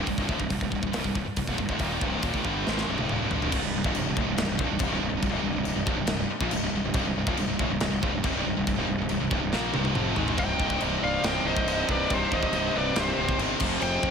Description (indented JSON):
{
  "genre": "heavy metal",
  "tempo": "140 BPM",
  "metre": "4/4",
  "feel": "straight",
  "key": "C minor",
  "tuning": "A4 = 444 Hz",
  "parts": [
    { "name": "high-gain distorted guitar", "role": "riff", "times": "0.0-14.1 s", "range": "C2 to Bb3", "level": "-30 LUFS", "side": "left 10 dB", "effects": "distortion" },
    { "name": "scooped high-gain guitar", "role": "riff", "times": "0.0-14.1 s", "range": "C2 to Bb3", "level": "-30 LUFS", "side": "right 10 dB", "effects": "distortion" },
    { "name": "fuzz fingered electric bass", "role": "bass", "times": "0.0-14.1 s", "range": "C1 to Bb1", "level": "-32 LUFS", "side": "equal", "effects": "overdrive" },
    { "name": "tight metal drum kit", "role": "drums", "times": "0.1-14.1 s", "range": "china cymbal, crash cymbal, hi-hat, kick drum, snare drum, toms", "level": "-30 LUFS", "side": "equal", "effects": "none" },
    { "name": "pipe organ, cornet", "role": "sustained chords", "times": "3.5-14.1 s", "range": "C3 to G5", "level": "-39 LUFS", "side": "equal", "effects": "none" },
    { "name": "high-gain lead guitar", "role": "melody", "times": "10.4-14.1 s", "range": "C5 to G5", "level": "-29 LUFS", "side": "left 2 dB", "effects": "distortion, slapback echo" },
    { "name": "high-gain lead guitar", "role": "second line", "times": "10.4-14.1 s", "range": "G4 to Eb5", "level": "-33 LUFS", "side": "right 3 dB", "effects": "distortion, ping-pong delay" }
  ],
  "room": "moderate lush hall reverb, RT60 2.0 s, studio reverb",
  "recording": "big arena sound",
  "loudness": "-24 LUFS",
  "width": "side -6 dB against mid",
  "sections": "0.0-3.5 A section; 3.5-10.4 B section; 10.4-14.1 C section",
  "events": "drum fill 2.7-3.5, 9.5-10.4",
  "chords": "0.0 Cm; 13.6 Fm"
}